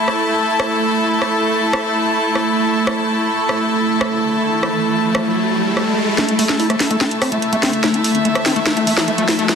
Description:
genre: psychedelic trance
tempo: 145 BPM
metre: 4/4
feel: straight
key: unclear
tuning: A4 = 440 Hz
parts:
  - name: evolving wavetable pad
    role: sustained chords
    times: 0.0-9.6 s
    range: A3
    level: -20 LUFS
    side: right 2 dB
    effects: ensemble chorus, built-in reverb
  - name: rich chamber string section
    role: texture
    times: 0.0-9.6 s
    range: E4 to A5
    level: -19 LUFS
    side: left 1 dB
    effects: none
  - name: garage drum kit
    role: drums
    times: 0.1-9.6 s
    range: hi-hat, rim click, snare drum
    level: -20 LUFS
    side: equal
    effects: overdrive
  - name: riser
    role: sound effects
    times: 3.9-9.6 s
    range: none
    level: -24 LUFS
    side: left 2 dB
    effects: none
  - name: overdriven acid bass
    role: riff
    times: 6.2-9.5 s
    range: A3 to E4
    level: -21 LUFS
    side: left 1 dB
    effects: distortion, auto-pan, dub echo
room: moderate lush hall reverb, RT60 2.1 s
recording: dense, heavily limited modern master, high-pass filter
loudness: -14 LUFS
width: side -6 dB against mid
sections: 0.0-6.2 A section; 6.2-9.6 B section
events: riser 3.9-6.2, 6.2-9.6; build-up 6.2-9.6; drum fill 6.2-9.6; filter sweep on acid bass 6.2-9.6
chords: 0.0 A5

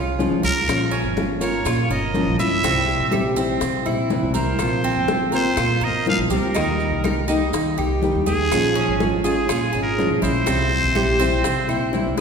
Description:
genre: latin, Cuban son and guajira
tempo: 123 BPM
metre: 4/4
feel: straight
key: unclear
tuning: A4 = 441 Hz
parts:
  - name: nylon-string guitar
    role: accompaniment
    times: 0.0-12.2 s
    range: C3 to G4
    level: -23 LUFS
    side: left 1 dB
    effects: none
  - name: Cuban tres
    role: arpeggios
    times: 0.0-12.2 s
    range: C4 to Bb4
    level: -25 LUFS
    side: right 3 dB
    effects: none
  - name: upright bass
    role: bass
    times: 0.0-12.2 s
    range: G1 to Eb3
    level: -25 LUFS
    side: equal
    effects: none
  - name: bongos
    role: percussion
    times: 0.2-12.2 s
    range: none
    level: -30 LUFS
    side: left 4 dB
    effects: none
  - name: congas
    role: percussion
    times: 0.2-12.2 s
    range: none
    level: -29 LUFS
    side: equal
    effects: none
  - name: maracas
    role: percussion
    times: 0.2-12.2 s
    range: none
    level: -37 LUFS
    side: right 7 dB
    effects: none
  - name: trumpet with straight mute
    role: melody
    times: 0.4-12.2 s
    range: Ab4 to F5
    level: -24 LUFS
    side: right 1 dB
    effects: none
  - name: claves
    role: percussion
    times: 0.7-11.9 s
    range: none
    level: -39 LUFS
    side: right 2 dB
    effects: none
room: wet concert hall reverb, RT60 1.9 s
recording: recorded in a church or concert hall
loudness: -18 LUFS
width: side -6 dB against mid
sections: 0.0-12.2 A section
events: none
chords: 0.0 Db; 0.7 Bbm; 2.6 C; 4.6 Bbsus2; 6.6 Eb; 8.5 Bbm7; 10.5 C

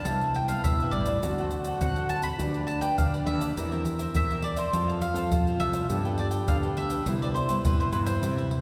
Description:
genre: samba and choro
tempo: 103 BPM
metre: 4/4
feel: straight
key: C major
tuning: A4 = 440 Hz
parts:
  - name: mandolin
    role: melody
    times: 0.0-8.6 s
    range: B4 to B5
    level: -33 LUFS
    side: equal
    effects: none
  - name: cavaquinho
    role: accompaniment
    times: 0.0-8.6 s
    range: D4 to G5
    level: -42 LUFS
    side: equal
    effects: none
  - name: nylon-string guitar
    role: accompaniment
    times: 0.0-8.6 s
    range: G2 to B4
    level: -38 LUFS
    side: equal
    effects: none
  - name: mellow trombone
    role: second line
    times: 0.1-8.6 s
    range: D4 to G4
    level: -37 LUFS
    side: equal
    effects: none
  - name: fretless electric bass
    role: bass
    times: 0.1-8.6 s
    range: A1 to C3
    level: -33 LUFS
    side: equal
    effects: none
  - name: egg shaker, surdo and pandeiro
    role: percussion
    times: 0.1-8.6 s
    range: none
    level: -33 LUFS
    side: equal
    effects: none
room: wet concert hall reverb, RT60 2.4 s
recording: recorded in a church or concert hall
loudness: -27 LUFS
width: mono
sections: 0.0-8.6 A section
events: none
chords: 0.1 Cmaj7; 1.2 D7; 2.4 G/D; 3.6 C7/E; 4.7 F; 5.9 Gadd9; 7.1 Cmaj7

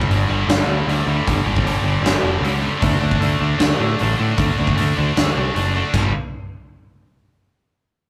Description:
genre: hard rock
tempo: 154 BPM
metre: 4/4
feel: straight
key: unclear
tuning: A4 = 440 Hz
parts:
  - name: high-gain distorted guitar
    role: riff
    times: 0.0-6.1 s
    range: G2 to D4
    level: -24 LUFS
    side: equal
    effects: distortion
  - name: growling picked electric bass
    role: bass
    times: 0.0-6.1 s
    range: F1 to A2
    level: -23 LUFS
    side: equal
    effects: overdrive
  - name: huge arena drum kit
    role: drums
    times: 0.0-6.0 s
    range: crash cymbal, hi-hat, kick drum, snare drum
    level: -23 LUFS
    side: equal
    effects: none
room: light reverb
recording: rough rehearsal-room recording, tube saturation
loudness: -19 LUFS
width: mono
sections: 0.0-5.9 A section; 5.9-7.5 B section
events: none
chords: 0.0 G5; 2.8 D5; 5.9 G5

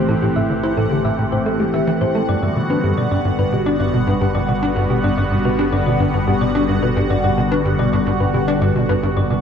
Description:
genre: ambient, sequencer-driven space music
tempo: 109 BPM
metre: 4/4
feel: straight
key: unclear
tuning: A4 = 440 Hz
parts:
  - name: phased analog pad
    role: sustained chords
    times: 0.0-9.4 s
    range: D3 to G4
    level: -19 LUFS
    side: left 1 dB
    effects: phaser, chorus
  - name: thumb-piano-like synth pluck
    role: arpeggios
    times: 0.0-9.4 s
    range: G4 to E5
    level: -25 LUFS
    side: left 1 dB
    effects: chorus, auto-pan, tape echo
  - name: tight sequencer bass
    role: riff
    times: 0.0-9.3 s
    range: G2 to E4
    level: -19 LUFS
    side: equal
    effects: lush chorus, tape echo
  - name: analog drone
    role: bass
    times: 0.0-9.4 s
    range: G1 to A1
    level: -30 LUFS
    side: equal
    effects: chorus
  - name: bubbling stepped-filter texture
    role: texture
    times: 0.0-9.4 s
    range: F#5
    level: -33 LUFS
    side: right 4 dB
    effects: chorus, built-in reverb
room: wet concert hall reverb, RT60 2.2 s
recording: dark, warm production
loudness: -15 LUFS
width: side -7 dB against mid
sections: 0.0-9.4 A section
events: fade-in on synth drone 0.0-9.4; fade-in on synth texture 0.0-9.4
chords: 0.0 Am7; 2.3 Gmaj7

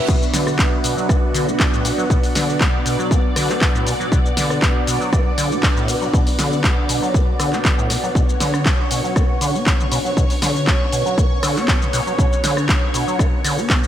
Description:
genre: acid house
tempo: 119 BPM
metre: 4/4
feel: straight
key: B minor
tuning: A4 = 440 Hz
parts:
  - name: string machine, full ensemble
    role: sustained chords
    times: 0.0-13.9 s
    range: B3 to D5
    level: -24 LUFS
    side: equal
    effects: ensemble chorus, sidechain pumping
  - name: warbly tape-like pad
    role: texture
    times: 0.0-13.9 s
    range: D4 to F#5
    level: -27 LUFS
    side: right 2 dB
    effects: chorus, built-in reverb, phaser, sidechain pumping
  - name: liquid acid bass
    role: riff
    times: 0.1-13.9 s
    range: A2 to B3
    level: -23 LUFS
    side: equal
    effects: overdrive, lush chorus, analog delay
  - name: electronic kick drum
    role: drums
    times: 0.1-13.8 s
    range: none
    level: -18 LUFS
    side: equal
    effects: none
  - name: punchy analog drum machine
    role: drums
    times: 0.1-13.9 s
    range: crash cymbal, handclaps, hi-hat, rim click, shaker, snare drum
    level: -23 LUFS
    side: left 1 dB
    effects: none
room: moderate plate reverb, RT60 3.0 s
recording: dreamy mix soaked in reverb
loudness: -15 LUFS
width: side -11 dB against mid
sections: 0.0-13.9 A section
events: filter sweep on acid bass 0.0-13.9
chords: 0.0 Bm

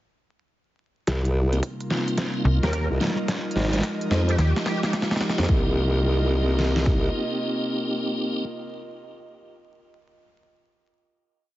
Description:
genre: glitch hop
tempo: 109 BPM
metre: 4/4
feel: swing 64% on 16ths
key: C minor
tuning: A4 = 440 Hz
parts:
  - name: warbly tape-like pad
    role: sustained chords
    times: 1.7-8.4 s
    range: C3 to Bb4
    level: -32 LUFS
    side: equal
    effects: chorus, built-in reverb, vintage 12-bit sampler grit, sidechain pumping
  - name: formant-sweep wobble bass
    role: bass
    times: 1.1-7.1 s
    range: Ab1 to F2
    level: -22 LUFS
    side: equal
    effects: chorus, tube saturation
  - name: dubstep drum kit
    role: drums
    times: 1.1-7.0 s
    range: kick drum, snare drum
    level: -24 LUFS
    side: equal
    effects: high-pass filter on kick, studio reverb, high-pass filter on snare
  - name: dubstep drum kit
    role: drums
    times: 1.1-5.5 s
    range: hi-hat, snare drum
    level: -28 LUFS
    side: equal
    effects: studio reverb
  - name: airy breathy pad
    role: texture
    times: 1.7-8.5 s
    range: F4 to Eb5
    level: -34 LUFS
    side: right 2 dB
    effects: chorus, sidechain pumping
  - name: tonewheel organ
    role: stabs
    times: 1.5-8.4 s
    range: Ab3 to Ab4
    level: -29 LUFS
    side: equal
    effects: overdrive, chorus vibrato, fast rotary speaker, vintage 12-bit sampler grit, sidechain pumping, low-pass filter, dub echo
  - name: slap-like FM bass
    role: bass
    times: 2.4-4.5 s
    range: C2 to Eb2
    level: -19 LUFS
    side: equal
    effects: none
  - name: sync lead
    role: melody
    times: 2.6-4.9 s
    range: G4 to Bb4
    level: -35 LUFS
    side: equal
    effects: ensemble chorus, vintage 12-bit sampler grit, dub echo
room: light reverb, digital ambience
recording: heavily compressed radio sound, vinyl crackle, nothing above 7.7 kHz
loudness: -21 LUFS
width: side -15 dB against mid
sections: 1.1-5.5 build; 5.5-7.7 final chord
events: build-up 1.1-5.5; drum fill 1.1-5.5; filter sweep on ambient pad 1.1-5.5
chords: 1.1 Cm7; 3.3 Fm9; 5.5 Cm7

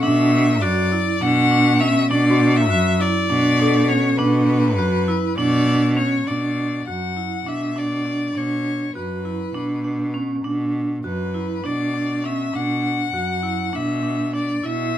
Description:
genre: contemporary instrumental, chamber music in an uneven meter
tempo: 201 BPM (eighths)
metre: 7/8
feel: straight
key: B minor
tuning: A4 = 437 Hz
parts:
  - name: rich violin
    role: melody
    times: 0.0-15.0 s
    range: B4 to F#5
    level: -24 LUFS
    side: left 6 dB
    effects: none
  - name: vibraphone with hard mallets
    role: arpeggios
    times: 0.0-15.0 s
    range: C#4 to F#4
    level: -21 LUFS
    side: right 1 dB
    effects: none
  - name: clear cello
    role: bass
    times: 0.0-15.0 s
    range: F#2 to B2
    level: -23 LUFS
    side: right 2 dB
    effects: none
  - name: celesta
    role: texture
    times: 0.0-5.0 s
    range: F#4 to C#6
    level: -30 LUFS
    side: left 9 dB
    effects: none
room: light reverb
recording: close, detailed microphones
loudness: -18 LUFS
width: side -11 dB against mid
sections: 0.0-6.3 A section; 6.3-15.0 B section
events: none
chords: 0.0 Bm7

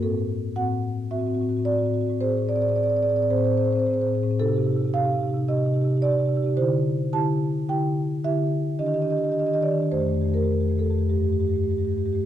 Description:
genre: classical, contemporary piece for solo marimba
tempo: 109 BPM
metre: 4/4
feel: rubato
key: unclear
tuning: A4 = 439 Hz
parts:
  - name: marimba with soft mallets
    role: solo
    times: 0.0-12.3 s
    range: F2 to A5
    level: -21 LUFS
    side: equal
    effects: none
room: moderate scoring stage reverb, RT60 1.8 s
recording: none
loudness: -21 LUFS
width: side -11 dB against mid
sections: 0.0-12.3 A section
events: none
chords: 0.0 Am6; 2.2 Ammaj7; 4.4 Cm6; 6.6 D9sus4; 8.8 Ebmaj7; 9.9 Fadd9; 11.1 Gsus2

